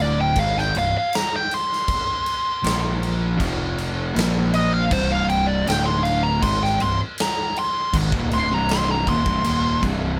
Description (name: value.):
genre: stoner and doom metal.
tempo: 79 BPM.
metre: 4/4.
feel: straight.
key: C minor.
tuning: A4 = 440 Hz.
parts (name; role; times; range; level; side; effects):
fuzz lead guitar; melody; 0.0-9.8 s; C5 to C6; -24 LUFS; equal; wah, distortion.
fuzz guitar; riff; 0.0-10.2 s; C2 to Bb3; -25 LUFS; equal; distortion.
fuzz picked electric bass; bass; 0.0-10.2 s; C1 to Bb1; -28 LUFS; equal; overdrive.
big rock drum kit; drums; 0.4-10.0 s; crash cymbal, kick drum, snare drum; -29 LUFS; equal; none.
room: light reverb.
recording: band playing live in one room.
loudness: -21 LUFS.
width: mono.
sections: 0.0-10.2 A section.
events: lead electric guitar solo 0.0-10.2.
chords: 0.4 Cm; 2.6 Bb5; 3.4 F5; 4.2 Bb5; 4.9 C5; 5.7 D5; 6.4 Cm.